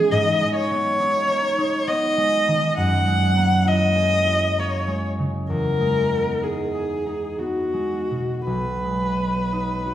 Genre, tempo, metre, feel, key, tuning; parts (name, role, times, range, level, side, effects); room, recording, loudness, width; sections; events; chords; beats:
classical, impressionist duo for viola and harp; 53-69 BPM; 3/4; rubato; A4 = 441 Hz
warm viola; melody; 0.0-9.9 s; F#4 to F#5; -21 LUFS; equal
concert harp; accompaniment; 0.0-9.9 s; B1 to A#4; -23 LUFS; equal
wet recital hall reverb, RT60 1.6 s; heard from further back in the room; -19 LUFS; side -12 dB against mid
0.0-9.9 A section
0.1 G#madd9; 2.8 F#9; 5.5 Emaj7; 8.5 B6
| 0.12 0.99 1.86 | 2.77 3.66 4.57 | 5.49 6.41 7.38 | 8.47 9.52